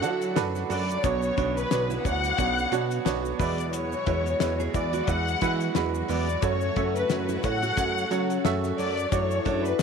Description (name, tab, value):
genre	piano-driven pop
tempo	89 BPM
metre	4/4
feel	swing 56% on 16ths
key	F# minor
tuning	A4 = 440 Hz
part	dark studio violin section	melody	0.0-9.8 s	B4 to F#5	-29 LUFS	left 4 dB	slapback echo
part	bright upright piano	accompaniment	0.0-9.8 s	B2 to F#5	-29 LUFS	right 13 dB	none
part	warm studio string section	sustained chords	0.0-9.8 s	C#3 to A4	-37 LUFS	left 2 dB	none
part	fingerpicked steel-string acoustic guitar	riff	0.0-9.6 s	B3 to G#4	-35 LUFS	right 14 dB	none
part	fat analog bass	bass	0.0-9.8 s	B1 to F#3	-30 LUFS	left 1 dB	none
part	damped 70s drum kit	drums	0.0-9.8 s	hi-hat, kick drum, snare drum	-30 LUFS	left 5 dB	none
part	tube shaker	percussion	0.0-9.8 s	none	-46 LUFS	left 17 dB	none
part	mellow French horn section	second line	6.4-9.8 s	A2 to E4	-33 LUFS	left 15 dB	slapback echo
room	light reverb, small room ambience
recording	1960s-style stereo with parts hard left and right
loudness	-24 LUFS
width	side -6 dB against mid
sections	0.0-9.8 A section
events	none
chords	0.0 D; 1.0 Bmadd9; 3.4 Eadd9; 6.4 F#m; 9.1 D/F#